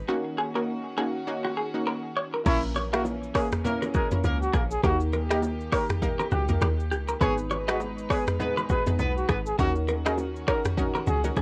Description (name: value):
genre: afrobeats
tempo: 101 BPM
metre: 4/4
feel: swing 58% on 16ths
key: unclear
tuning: A4 = 444 Hz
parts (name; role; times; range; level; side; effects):
- warm symphonic string section; sustained chords; 0.0-11.4 s; D#3 to B4; -41 LUFS; equal; cassette tape
- deep log drum bass; bass; 0.0-11.4 s; G#1 to D#2; -31 LUFS; equal; none
- analog pluck; accompaniment; 0.1-11.4 s; A#3 to B4; -34 LUFS; equal; chorus, cassette tape
- clean electric guitar; riff; 0.1-11.4 s; F#4 to E5; -33 LUFS; equal; lush chorus, cassette tape
- breathy trumpet; melody; 2.5-11.2 s; E4 to B4; -33 LUFS; equal; cassette tape
- warm horn section; second line; 2.5-9.4 s; G#3 to C#5; -37 LUFS; equal; cassette tape
- afro-pop drum kit; drums; 2.5-11.4 s; crash cymbal, finger snaps, hi-hat, kick drum, rim click, shaker, toms; -31 LUFS; equal; cassette tape
- congas and bongos; percussion; 2.5-11.4 s; none; -38 LUFS; equal; none
room: moderate small room reverb, RT60 0.5 s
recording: home recording on cassette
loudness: -27 LUFS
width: mono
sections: 0.0-2.5 A section; 2.5-11.4 B section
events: break 0.1-2.5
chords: 0.1 D#m7; 2.5 A#dim; 4.8 D#; 7.2 G#m; 9.6 D#m7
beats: | 0.08 0.68 1.27 1.86 | 2.46 3.05 3.65 4.24 | 4.84 5.43 6.02 6.62 | 7.21 7.81 8.40 8.99 | 9.59 10.18 10.78 11.37